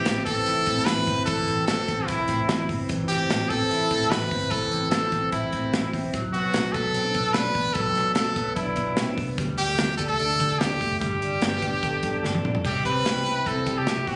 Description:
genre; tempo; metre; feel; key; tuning
jangly indie pop; 148 BPM; 4/4; straight; unclear; A4 = 440 Hz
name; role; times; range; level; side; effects
brilliant trumpet; melody; 0.0-14.2 s; E4 to B4; -27 LUFS; equal; none
electric guitar through a small old amp; arpeggios; 0.0-14.2 s; E3 to A4; -32 LUFS; equal; subtle chorus
vintage muted fingered electric bass; bass; 0.0-14.2 s; F#1 to D3; -34 LUFS; equal; none
modern studio drum kit; drums; 0.1-14.2 s; crash cymbal, hi-hat, kick drum, snare drum, toms; -31 LUFS; equal; none
room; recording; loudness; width
light reverb; recorded on a phone in the room, club reverb, nothing above 10.4 kHz; -25 LUFS; mono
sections
0.0-12.6 A section; 12.6-14.2 B section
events
drum fill 12.2-12.6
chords
0.0 Am; 6.1 Bm; 9.4 Dsus4; 11.0 Gadd9; 12.6 C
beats
0.06 0.47 0.87 | 1.28 1.68 2.09 2.49 | 2.90 3.30 3.71 4.11 | 4.51 4.92 5.33 5.73 | 6.13 6.54 6.95 7.35 | 7.76 8.16 8.57 8.97 | 9.38 9.79 10.20 10.60 | 11.01 11.42 11.82 12.23 | 12.64 13.05 13.46 13.87

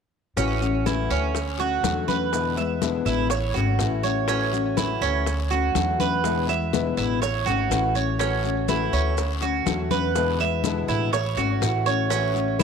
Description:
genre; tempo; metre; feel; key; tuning
latin, Cuban son and guajira; 123 BPM; 4/4; straight; A major; A4 = 440 Hz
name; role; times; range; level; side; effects
fingerpicked steel-string acoustic guitar; accompaniment; 0.4-12.6 s; B2 to F#4; -27 LUFS; left 11 dB; none
Cuban tres; arpeggios; 0.4-12.6 s; C#4 to E5; -25 LUFS; right 10 dB; tape echo
upright bass; bass; 0.4-12.6 s; G#1 to E2; -27 LUFS; equal; none
bongos; percussion; 0.4-12.6 s; none; -34 LUFS; left 13 dB; none
congas; percussion; 0.4-12.6 s; none; -31 LUFS; left 8 dB; none
guiro; percussion; 0.4-12.6 s; none; -37 LUFS; left 14 dB; none
maracas; percussion; 0.4-12.6 s; none; -37 LUFS; right 13 dB; none
room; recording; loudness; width
moderate plate reverb, RT60 3.4 s; 1960s-style stereo with parts hard left and right; -21 LUFS; side -6 dB against mid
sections
0.4-12.6 A section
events
none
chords
0.4 A6; 1.4 Dmaj7; 2.3 E7; 3.3 A6; 5.3 Dmaj7; 6.2 E7; 7.2 A6; 9.2 Dmaj7; 10.2 E7; 11.1 A6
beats
| 0.37 0.86 1.35 1.84 | 2.33 2.82 3.31 3.80 | 4.29 4.78 5.27 5.75 | 6.24 6.73 7.22 7.71 | 8.20 8.69 9.18 9.67 | 10.15 10.64 11.13 11.62 | 12.11 12.60

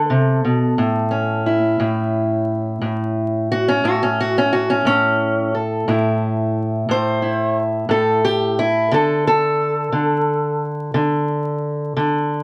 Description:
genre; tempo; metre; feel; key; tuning
acoustic country blues, solo or duo; 59 BPM (dotted quarters); 12/8; straight; A major; A4 = 443 Hz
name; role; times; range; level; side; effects
fingerpicked steel-string acoustic guitar; solo; 0.0-12.4 s; A2 to C5; -19 LUFS; equal; none
room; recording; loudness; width
light reverb; dark, warm production, vinyl crackle; -19 LUFS; mono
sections
0.0-12.4 A section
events
steel-string acoustic guitar solo 0.0-12.4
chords
0.0 D7(no3); 0.8 A; 8.9 D5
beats
| 0.79 1.80 2.82 3.84 | 4.85 5.87 6.89 7.90 | 8.92 9.93 10.94 11.96

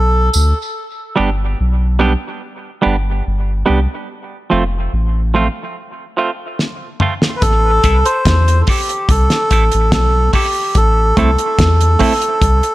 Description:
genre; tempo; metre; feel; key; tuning
dub reggae; 72 BPM; 4/4; straight; A minor; A4 = 440 Hz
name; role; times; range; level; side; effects
melodica; melody; 0.0-0.3, 7.4-12.7 s; G4 to C5; -16 LUFS; equal; dub echo
soft dub sub bass; bass; 0.0-12.6 s; F1 to E2; -14 LUFS; equal; none
tambourine; percussion; 0.3-0.5 s; none; -24 LUFS; right 4 dB; dub echo
semi-hollow electric guitar; accompaniment; 1.2-12.1 s; F3 to A4; -19 LUFS; right 4 dB; high-pass filter, dub echo
damped 70s drum kit; drums; 6.6-12.7 s; hi-hat, kick drum, snare drum, toms; -16 LUFS; equal; none
room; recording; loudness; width
small room reverb; none; -12 LUFS; side -16 dB against mid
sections
0.0-7.4 A section; 7.4-12.7 B section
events
break 0.0-0.8, 0.8-7.4; filter sweep on clean electric guitar 4.1-10.8; drum fill 6.6-7.4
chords
0.0 N.C.; 0.8 G; 4.1 F; 7.4 Am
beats
| 0.75 1.58 2.42 3.25 | 4.08 4.92 5.75 6.59 | 7.42 8.25 9.09 9.92 | 10.75 11.59 12.42

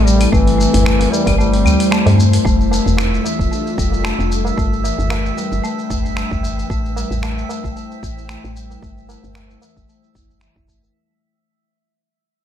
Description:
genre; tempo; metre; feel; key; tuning
organic downtempo; 113 BPM; 4/4; swing 55% on 16ths; unclear; A4 = 440 Hz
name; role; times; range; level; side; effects
mellow duduk; melody; 0.0-2.1 s; E3 to G3; -20 LUFS; equal; digital delay
ethereal airy pad; sustained chords; 0.0-10.9 s; G3 to G5; -25 LUFS; right 1 dB; ensemble chorus, built-in reverb, tremolo, sidechain pumping
woody FM bass; bass; 0.0-10.9 s; F1 to G2; -17 LUFS; equal; sidechain pumping
marimba with medium mallets; arpeggios; 0.1-10.8 s; E3 to E4; -21 LUFS; left 4 dB; low-pass filter, digital delay
dusty soul sampler-style drum kit; drums; 0.1-10.9 s; claves, finger snaps, hi-hat, shaker; -25 LUFS; left 1 dB; none
electronic kick drum; drums; 0.3-10.8 s; none; -20 LUFS; equal; none
tabla; percussion; 0.7-10.9 s; none; -28 LUFS; right 3 dB; none
drifting glass-harmonics texture; texture; 2.6-11.0 s; E5; -30 LUFS; right 7 dB; chorus, built-in reverb
room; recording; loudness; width
light reverb; none; -14 LUFS; side -10 dB against mid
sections
0.0-2.4 A section; 2.4-10.9 B section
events
kick drops out 1.4-2.4; fade-out 2.4-10.9; filter sweep on FM bass 2.4-10.9; filter sweep on marimba 2.4-10.9; filter sweep on ambient pad 2.4-10.9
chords
0.3 C/G; 2.4 F69; 4.6 G; 6.7 Am7; 8.8 C/G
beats
| 0.33 0.86 1.39 1.92 | 2.45 2.98 3.51 4.04 | 4.57 5.10 5.63 6.17 | 6.70 7.23 7.76 8.29 | 8.82 9.35 9.88 10.41

